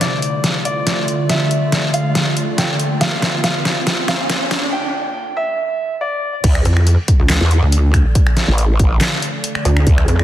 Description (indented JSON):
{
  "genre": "heavy wobble dubstep",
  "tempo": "140 BPM",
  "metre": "4/4",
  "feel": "swing 53% on 16ths, half-time",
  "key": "D minor",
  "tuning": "A4 = 435 Hz",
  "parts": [
    { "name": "dark baby grand piano", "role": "melody", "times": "0.0-6.3 s", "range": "D5 to G5", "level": "-22 LUFS", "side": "equal", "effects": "digital delay" },
    { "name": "evolving wavetable pad", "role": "sustained chords", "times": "0.0-10.2 s", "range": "D3 to D5", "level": "-23 LUFS", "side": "equal", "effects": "chorus, built-in reverb, sidechain pumping" },
    { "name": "dubstep drum kit", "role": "drums", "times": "0.0-10.2 s", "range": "crash cymbal, finger snaps, handclaps, hi-hat, snare drum", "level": "-19 LUFS", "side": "equal", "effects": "soft clipping on snare" },
    { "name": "riser", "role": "sound effects", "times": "0.0-4.7 s", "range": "none", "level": "-27 LUFS", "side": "right 1 dB", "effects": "none" },
    { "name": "growl bass", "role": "bass", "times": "6.4-10.1 s", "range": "A1 to E2", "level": "-14 LUFS", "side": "equal", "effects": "chorus, overdrive" },
    { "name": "electronic kick drum", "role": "drums", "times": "6.4-10.0 s", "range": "none", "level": "-13 LUFS", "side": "equal", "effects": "none" },
    { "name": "pulsing pluck wobble bass", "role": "bass", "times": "6.7-10.2 s", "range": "D2 to F2", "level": "-13 LUFS", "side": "equal", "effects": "chorus, overdrive" }
  ],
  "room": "light reverb, digital ambience",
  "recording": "dense, heavily limited modern master, high-pass filter",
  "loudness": "-14 LUFS",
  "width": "side -12 dB against mid",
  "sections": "0.0-6.4 A section; 6.4-10.2 B section",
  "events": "build-up 0.0-6.4; drum fill 0.0-4.7; riser 0.0-4.7; filter sweep 0.0-6.4; break 4.7-6.4; drop 6.4-10.2",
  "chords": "0.0 Dm; 3.0 Bb; 4.7 N.C.; 6.4 D5"
}